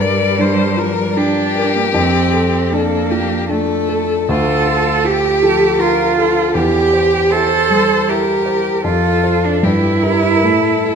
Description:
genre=classical, slow romantic movement for piano trio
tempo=78 BPM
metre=3/4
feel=rubato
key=D minor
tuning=A4 = 440 Hz
part: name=rich violin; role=melody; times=0.0-10.9 s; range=F4 to D5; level=-19 LUFS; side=left 9 dB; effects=none
part: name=rich cello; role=second line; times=0.0-10.9 s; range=G3 to A4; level=-16 LUFS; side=right 5 dB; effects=none
part: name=dark grand piano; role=accompaniment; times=0.0-10.9 s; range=D2 to C5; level=-17 LUFS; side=equal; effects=none
room=wet recital hall reverb, RT60 1.7 s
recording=none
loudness=-12 LUFS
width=side -6 dB against mid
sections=0.0-10.9 A section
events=none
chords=0.0 Gm7; 1.9 Dm/F; 4.3 Dm; 6.6 C/E; 8.8 F; 9.6 Gm; 10.4 A5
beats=0.39 1.16 | 1.94 2.72 3.49 | 4.29 5.05 5.80 | 6.55 7.32 8.09 | 8.85 9.63 10.45

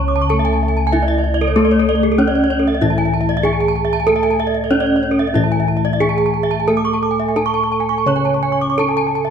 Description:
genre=Balinese gamelan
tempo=82-96 BPM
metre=4/4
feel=straight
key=unclear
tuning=A4 = 440 Hz
part: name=gamelan-type bronze metallophone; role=melody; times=0.0-9.3 s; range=A3 to C#5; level=-18 LUFS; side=right 2 dB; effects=none
part: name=gamelan-type bronze metallophone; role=accompaniment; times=0.0-9.3 s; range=C#3 to C#4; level=-24 LUFS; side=right 3 dB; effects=none
part: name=gamelan-type bronze metallophone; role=arpeggios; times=0.0-9.2 s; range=G#4 to D6+35c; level=-22 LUFS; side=left 5 dB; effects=none
part: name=gamelan-type bossed gongs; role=bass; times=0.0-9.3 s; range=C#2 to A4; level=-20 LUFS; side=left 3 dB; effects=none
part: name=gamelan-type bronze metallophone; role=arpeggios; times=0.1-9.3 s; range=A4 to D6+35c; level=-22 LUFS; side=right 6 dB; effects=none
room=moderate recital hall reverb, RT60 1.4 s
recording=dark, warm production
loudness=-14 LUFS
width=side -7 dB against mid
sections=0.0-9.3 A section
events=none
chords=none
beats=0.31 0.93 | 1.56 2.19 2.82 3.44 | 4.07 4.71 5.35 6.01 | 6.68 7.37 8.07 8.79

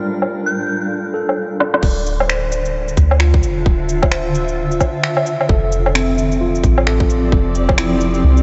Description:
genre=future garage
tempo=131 BPM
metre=4/4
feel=swing 60% on 16ths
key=D minor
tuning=A4 = 438 Hz
part: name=mellow tine electric piano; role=accompaniment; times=0.0-8.4 s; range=C4 to D5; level=-25 LUFS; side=equal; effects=sidechain pumping, analog delay
part: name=granular cloud pad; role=sustained chords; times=0.0-8.4 s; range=D3 to F5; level=-24 LUFS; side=equal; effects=built-in reverb, sidechain pumping
part: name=organic electronic drum kit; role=drums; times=0.2-8.4 s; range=crash cymbal, finger snaps, shaker, snare drum, woodblock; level=-23 LUFS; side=equal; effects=overdrive, low-pass filter on perc, low-pass filter on snare, low-pass filter on cymbals, low-pass filter on room
part: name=glassy synth bell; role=melody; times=0.5-0.8 s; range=G6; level=-29 LUFS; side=equal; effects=chorus, phaser, delay
part: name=soft 808-style bass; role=bass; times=1.8-8.4 s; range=D1 to D2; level=-19 LUFS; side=equal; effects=sidechain pumping
part: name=electronic kick drum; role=drums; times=1.8-7.8 s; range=none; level=-18 LUFS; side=equal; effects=overdrive
room=moderate cathedral reverb, RT60 6.0 s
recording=dreamy mix soaked in reverb, nothing above 7.9 kHz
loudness=-16 LUFS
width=mono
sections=0.0-1.8 A section; 1.8-8.4 B section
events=filter sweep 0.0-1.8; drum fill 1.6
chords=0.0 Gm7; 1.8 Dmadd9; 5.5 F6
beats=| 0.00 0.46 0.91 1.37 | 1.83 2.29 2.75 3.21 | 3.66 4.12 4.58 5.04 | 5.50 5.95 6.41 6.87 | 7.33 7.79 8.24

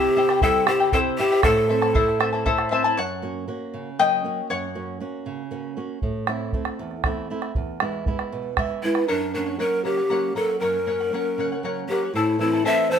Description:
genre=andean folk, Andean ensemble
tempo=78 BPM (dotted quarters)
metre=6/8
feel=straight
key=unclear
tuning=A4 = 440 Hz
part: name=breathy mellow large pan pipes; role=melody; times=0.0-2.5, 8.8-13.0 s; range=D4 to E5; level=-22 LUFS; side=left 1 dB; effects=none
part: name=charango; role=accompaniment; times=0.0-5.7, 9.1-13.0 s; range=E4 to A5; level=-24 LUFS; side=left 4 dB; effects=none
part: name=flamenco guitar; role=accompaniment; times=0.0-13.0 s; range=E2 to E5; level=-28 LUFS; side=right 4 dB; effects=none
part: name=bombo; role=percussion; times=0.3-2.9, 6.0-9.1 s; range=none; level=-25 LUFS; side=right 3 dB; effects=none
room=moderate large studio reverb, RT60 1.0 s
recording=band playing live in one room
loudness=-21 LUFS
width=side -8 dB against mid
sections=0.0-3.0 A section; 3.0-9.1 B section; 9.1-13.0 C section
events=charango solo 3.0-9.1; nylon-string guitar fill 8.3-9.1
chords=0.0 C; 1.4 Am; 3.0 F#; 6.0 Am; 7.6 E; 9.1 F#; 12.1 Am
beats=0.68 | 1.44 2.21 | 2.97 3.73 | 4.50 5.26 | 6.03 6.79 | 7.56 8.32 | 9.09 9.85 | 10.62 11.38 | 12.14 12.90

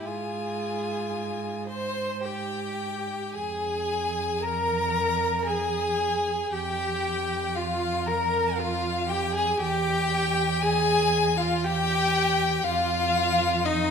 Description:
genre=classical, slow romantic movement for string quartet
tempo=53-60 BPM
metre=3/4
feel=rubato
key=F minor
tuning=A4 = 440 Hz
part: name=clear violin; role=melody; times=0.0-13.9 s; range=Eb5 to C6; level=-29 LUFS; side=left 8 dB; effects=none
part: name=warm violin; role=second line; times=0.0-13.9 s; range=Eb4 to C5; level=-29 LUFS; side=left 2 dB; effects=none
part: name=clear viola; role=accompaniment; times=0.0-13.9 s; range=Eb4 to C5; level=-30 LUFS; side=right 3 dB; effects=none
part: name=warm cello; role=bass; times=0.0-13.9 s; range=E2 to Ab2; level=-31 LUFS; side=right 5 dB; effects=none
room=moderate recital hall reverb, RT60 1.4 s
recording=minimal, uncompressed stereo recording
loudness=-24 LUFS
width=side -6 dB against mid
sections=0.0-3.4 A section; 3.4-13.9 A section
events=none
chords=0.1 Fm/Ab; 3.4 Fm; 9.6 Em; 12.7 Ebsus2/F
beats=| 0.07 1.17 2.25 | 3.37 4.43 5.48 | 6.53 7.56 8.59 | 9.62 10.63 11.65 | 12.66 13.66

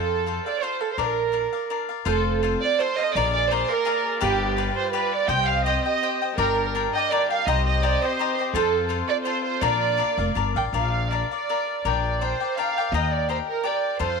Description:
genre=mexican folk, mariachi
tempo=166 BPM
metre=3/4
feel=rubato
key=Bb major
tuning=A4 = 438 Hz
part: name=warm studio violin section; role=melody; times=0.0-14.2 s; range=G4 to G5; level=-24 LUFS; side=right 8 dB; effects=none
part: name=cavaquinho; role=accompaniment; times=0.0-14.2 s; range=D4 to G5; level=-26 LUFS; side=left 14 dB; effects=none
part: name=upright bass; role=bass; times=0.0-14.2 s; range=F1 to F2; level=-27 LUFS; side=left 1 dB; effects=none
part: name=warm symphonic violin section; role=sustained chords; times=2.0-10.7 s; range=G3 to Eb5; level=-33 LUFS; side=left 2 dB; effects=none
room=moderate echo chamber reverb, RT60 2.0 s, small room ambience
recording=1960s-style stereo with parts hard left and right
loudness=-21 LUFS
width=side -5 dB against mid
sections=0.0-2.1 A section; 2.1-10.7 A section; 10.7-14.2 B section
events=none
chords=0.0 F; 1.0 Bb; 2.1 F; 3.1 Bb7; 4.2 G7; 5.3 Cm; 6.4 Gm; 7.5 Cm; 8.5 F; 9.6 Bb; 11.9 Gm/Bb; 12.9 Eb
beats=0.27 0.62 | 0.97 1.33 1.69 | 2.06 2.43 2.79 | 3.15 3.51 3.87 | 4.22 4.57 4.93 | 5.28 5.64 6.01 | 6.38 6.74 7.11 | 7.47 7.83 8.19 | 8.54 8.90 9.26 | 9.62 9.99 10.37 | 10.74 11.12 11.49 | 11.85 12.21 12.57 | 12.93 13.29 13.65 | 14.01

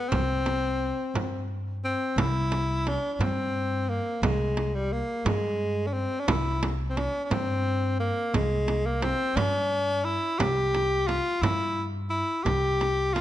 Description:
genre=Persian modal ensemble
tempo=58 BPM (dotted quarters)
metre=6/8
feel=straight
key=C dastgah homayun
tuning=A4 = 440 Hz
part: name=clear tenor saxophone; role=melody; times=0.0-13.2 s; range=G3 to G4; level=-27 LUFS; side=left 1 dB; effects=none
part: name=upright bass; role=bass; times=0.1-13.2 s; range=C2 to G2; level=-30 LUFS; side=equal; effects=none
part: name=frame drum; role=percussion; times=0.1-13.2 s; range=none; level=-30 LUFS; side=right 3 dB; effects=none
room=light reverb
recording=nothing above 10.7 kHz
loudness=-24 LUFS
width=side -13 dB against mid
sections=0.0-2.2 A section; 2.2-13.2 B section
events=none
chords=none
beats=| 0.11 1.14 | 2.17 3.19 | 4.22 5.25 | 6.28 7.31 | 8.34 9.37 | 10.39 11.42 | 12.45

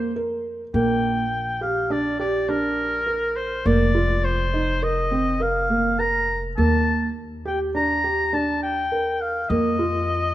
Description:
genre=contemporary instrumental, chamber music in an uneven meter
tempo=103 BPM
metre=5/4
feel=straight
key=Eb lydian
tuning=A4 = 439 Hz
part: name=warm oboe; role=melody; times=0.0-10.3 s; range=Bb4 to Bb5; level=-24 LUFS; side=left 1 dB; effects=none
part: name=felt-muted upright piano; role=arpeggios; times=0.0-10.3 s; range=Bb3 to Bb4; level=-24 LUFS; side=right 2 dB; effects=none
part: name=upright bass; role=bass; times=0.0-10.3 s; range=F1 to F2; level=-27 LUFS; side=equal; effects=none
room=light reverb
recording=none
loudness=-20 LUFS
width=side -14 dB against mid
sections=0.0-10.3 A section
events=none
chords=0.0 Fsus4; 0.7 Bb; 3.7 F7sus4; 6.6 Ebmaj7; 9.5 F7sus4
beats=0.15 | 0.74 1.32 1.91 2.49 3.07 | 3.66 4.24 4.82 5.41 5.99 | 6.58 7.16 7.74 8.33 8.91 | 9.50 10.08

